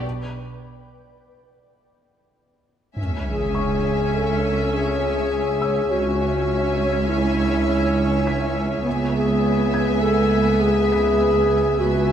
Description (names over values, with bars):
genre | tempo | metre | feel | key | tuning
cinematic | 102 BPM | 5/4 | straight | C# minor | A4 = 440 Hz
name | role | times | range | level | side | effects
warm studio violin section | melody | 0.0-12.1 s | G#5 | -34 LUFS | left 3 dB | none
shimmering ambient pad | sustained chords | 0.0-12.1 s | G#4 to G#5 | -28 LUFS | right 2 dB | chorus, built-in reverb
felt-muted upright piano | texture | 0.0-12.1 s | C#6 to B6 | -37 LUFS | left 2 dB | none
clear studio violin section | second line | 3.0-12.1 s | E5 | -33 LUFS | left 4 dB | none
rich studio viola section | accompaniment | 3.0-12.1 s | B3 to C#4 | -27 LUFS | right 2 dB | none
rich studio cello section | bass | 3.0-12.1 s | C#2 | -26 LUFS | right 2 dB | none
rich studio double bass section | bass | 3.0-12.1 s | C#2 | -26 LUFS | right 3 dB | none
sub drop | sound effects | 3.0-5.9 s | none | -29 LUFS | equal | none
dark clarinet | second line | 3.3-12.1 s | E4 to A4 | -22 LUFS | left 2 dB | none
room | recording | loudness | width
moderate scoring stage reverb, RT60 1.6 s | none | -18 LUFS | side -9 dB against mid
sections
0.0-3.0 A section; 3.0-12.1 B section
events
break 0.0-3.0; impact 3.0-5.9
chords
0.0 N.C.; 3.0 C#m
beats
| 0.04 0.62 1.21 1.80 2.39 | 2.98 3.56 4.15 4.74 5.33 | 5.92 6.50 7.09 7.68 8.27 | 8.86 9.45 10.04 10.62 11.21 | 11.80